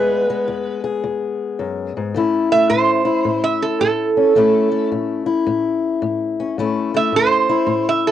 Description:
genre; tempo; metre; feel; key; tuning
acoustic country blues, solo or duo; 108 BPM; 4/4; swing 65% on 8ths; A major; A4 = 440 Hz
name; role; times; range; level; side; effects
metal-body resonator slide guitar; melody; 0.0-8.1 s; A4 to E5; -16 LUFS; right 5 dB; none
fingerpicked acoustic archtop guitar; accompaniment; 0.0-8.1 s; E2 to G#4; -19 LUFS; left 5 dB; cassette tape
room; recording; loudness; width
light reverb; home recording on cassette; -16 LUFS; side -10 dB against mid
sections
0.0-2.1 A section; 2.1-8.1 B section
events
resonator guitar played with a steel bar solo 2.1-8.1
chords
0.0 E; 2.1 A

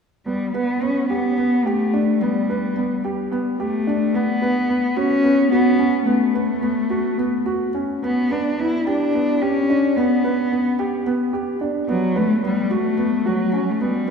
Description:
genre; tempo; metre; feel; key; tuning
contemporary instrumental, contemporary; 218 BPM (eighths); 7/8; straight; unclear; A4 = 440 Hz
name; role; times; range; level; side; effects
dark cello; melody; 0.3-14.1 s; F#3 to E4; -20 LUFS; left 1 dB; none
dark baby grand piano; arpeggios; 0.3-14.1 s; B3 to B4; -22 LUFS; right 1 dB; none
room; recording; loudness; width
wet church reverb, RT60 3.3 s; recorded in a church or concert hall; -18 LUFS; side -6 dB against mid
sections
0.3-14.1 A section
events
none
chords
0.3 Gadd9; 4.2 B5; 8.0 Bm; 11.9 B5

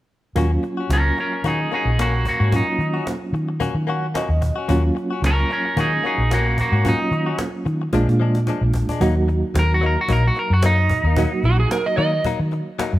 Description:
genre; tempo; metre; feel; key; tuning
straight-eighth soul blues; 111 BPM; 4/4; swing 56% on 16ths; Eb minor; A4 = 442 Hz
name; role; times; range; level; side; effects
bright reed electric piano; accompaniment; 0.4-13.0 s; Gb3 to Gb5; -26 LUFS; right 2 dB; fast tremolo
direct-recorded clean electric guitar; stabs; 0.4-13.0 s; F3 to Gb4; -28 LUFS; left 6 dB; tremolo
vintage muted fingered electric bass; bass; 0.4-13.0 s; Bb1 to Eb3; -19 LUFS; equal; none
cajon; drums; 0.4-12.9 s; none; -29 LUFS; equal; none
electric guitar at the edge of break-up; melody; 0.9-12.2 s; Bb3 to Bb4; -22 LUFS; right 1 dB; none
electric slide guitar; second line; 11.5-12.2 s; Gb4 to Eb5; -23 LUFS; right 3 dB; none
room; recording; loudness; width
light reverb; none; -17 LUFS; side -15 dB against mid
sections
0.4-9.0 A section; 9.0-13.0 B section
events
reed electric piano fill 3.6-4.7; drum fill 7.9-9.0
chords
0.4 Ebm7; 7.9 Bb7; 9.0 Ebm

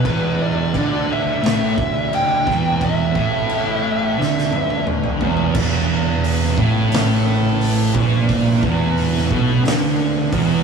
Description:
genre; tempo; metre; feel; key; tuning
stoner and doom metal; 88 BPM; 4/4; straight; E minor; A4 = 440 Hz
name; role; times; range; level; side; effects
fuzz lead guitar; melody; 0.0-4.8 s; B4 to G5; -22 LUFS; right 2 dB; distortion, analog delay
string machine, violins; sustained chords; 0.0-10.6 s; E3 to B4; -34 LUFS; left 1 dB; none
thick fuzz guitar; riff; 0.0-10.6 s; E2 to D3; -22 LUFS; left 3 dB; distortion
thick fuzz guitar; riff; 0.0-10.6 s; E2 to D3; -20 LUFS; right 6 dB; distortion
fuzz fingered electric bass; bass; 0.1-10.6 s; E1 to D2; -28 LUFS; equal; overdrive, tube saturation
oversized low-tuned drum kit; drums; 0.1-10.5 s; crash cymbal, hi-hat, kick drum, snare drum, toms; -22 LUFS; equal; none
room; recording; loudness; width
moderate small room ambience, RT60 0.5 s; rough rehearsal-room recording, warm saturation; -16 LUFS; side -6 dB against mid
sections
0.0-5.6 A section; 5.6-10.6 B section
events
drum fill 4.2-5.6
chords
0.0 E5

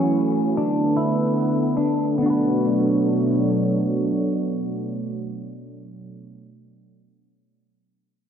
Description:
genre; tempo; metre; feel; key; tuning
dream pop; 72-78 BPM; 4/4; straight; B minor; A4 = 441 Hz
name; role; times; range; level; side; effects
lush unison pad; sustained chords; 0.0-6.1 s; B2 to C#5; -22 LUFS; right 2 dB; chorus, low-pass filter
clean electric guitar; arpeggios; 0.0-6.2 s; B3 to B4; -24 LUFS; left 2 dB; analog chorus, low-pass filter, tape echo
room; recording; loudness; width
moderate plate reverb, RT60 2.5 s; dark, warm production; -19 LUFS; side -8 dB against mid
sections
0.0-2.2 A section; 2.2-5.5 B section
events
slowing down 0.0-2.2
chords
0.0 F#m7; 0.6 Bm7

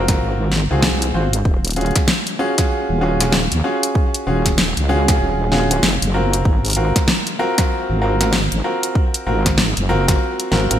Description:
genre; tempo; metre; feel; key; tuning
glitch hop; 96 BPM; 4/4; swing 62% on 16ths; Eb dorian; A4 = 440 Hz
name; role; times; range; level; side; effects
clear grand piano; stabs; 0.0-10.8 s; C4 to C5; -20 LUFS; equal; sidechain pumping, ping-pong delay
wobble bass; bass; 0.0-10.8 s; Eb1 to Eb2; -19 LUFS; equal; chorus
electronic kick drum; drums; 0.1-10.2 s; none; -18 LUFS; equal; none
pop drum kit; drums; 0.1-10.8 s; hi-hat, snare drum; -20 LUFS; equal; gated reverb
room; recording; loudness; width
light reverb; bright 1980s-style digital production; -15 LUFS; side -10 dB against mid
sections
0.0-10.8 A section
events
none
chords
0.0 Ab13; 1.5 Ebm11; 6.5 Ab13

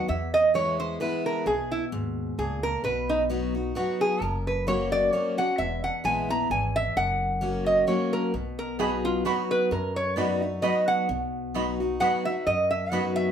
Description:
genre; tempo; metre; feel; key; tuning
bluegrass; 131 BPM; 3/4; swing 55% on 8ths; B major; A4 = 440 Hz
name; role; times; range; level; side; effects
lap resonator guitar; melody; 0.0-13.3 s; D#4 to A#5; -25 LUFS; right 1 dB; none
picked steel-string acoustic guitar; accompaniment; 0.0-13.3 s; E2 to F#4; -29 LUFS; left 2 dB; none
upright bass; bass; 0.0-13.3 s; E1 to F#2; -34 LUFS; equal; none
mandolin; stabs; 8.8-13.0 s; B3 to B5; -30 LUFS; right 4 dB; none
room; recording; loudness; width
wet studio reverb, RT60 0.5 s; band playing live in one room; -24 LUFS; side -8 dB against mid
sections
0.0-13.3 A section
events
none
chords
0.1 E; 2.8 B; 4.2 F#; 5.6 E; 7.0 F#; 8.3 B

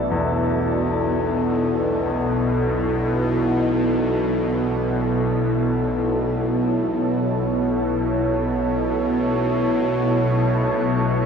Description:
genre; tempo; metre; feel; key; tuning
dark ambient drone; free time; none; none; B minor; A4 = 441 Hz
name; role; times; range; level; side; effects
deep dark ambient pad; sustained chords; 0.0-11.3 s; B3 to D5; -22 LUFS; equal; chorus, built-in reverb, shimmer reverb
bowed-like drone; drone; 0.0-11.3 s; B1 to B2; -22 LUFS; equal; built-in reverb, phaser
bronze singing bowl; texture; 0.0-11.3 s; none; barely audible; none; none
clear concert grand piano; arpeggios; 0.1-11.3 s; E2; -31 LUFS; left 3 dB; diffuse ambient delay, shimmer reverb
room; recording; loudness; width
wet huge ambient reverb, RT60 8.4 s; none; -19 LUFS; side -6 dB against mid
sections
0.0-11.3 A section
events
none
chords
0.0 Bmadd9

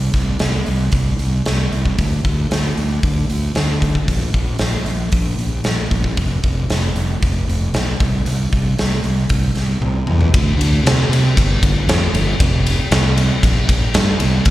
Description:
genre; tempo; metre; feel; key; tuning
quiet-loud alternative rock; 115 BPM; 4/4; straight; unclear; A4 = 439 Hz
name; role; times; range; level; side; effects
fuzz fingered electric bass; bass; 0.0-14.5 s; F1 to C3; -17 LUFS; equal; overdrive
big rock drum kit; drums; 0.1-14.5 s; hi-hat, kick drum, ride cymbal, snare drum, toms; -18 LUFS; equal; none
room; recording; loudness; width
little or no reverb; live gig heard through the venue's PA, recital hall reverb; -15 LUFS; side -15 dB against mid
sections
0.0-10.3 A section; 10.3-14.5 B section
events
drum fill 9.8-10.3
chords
none

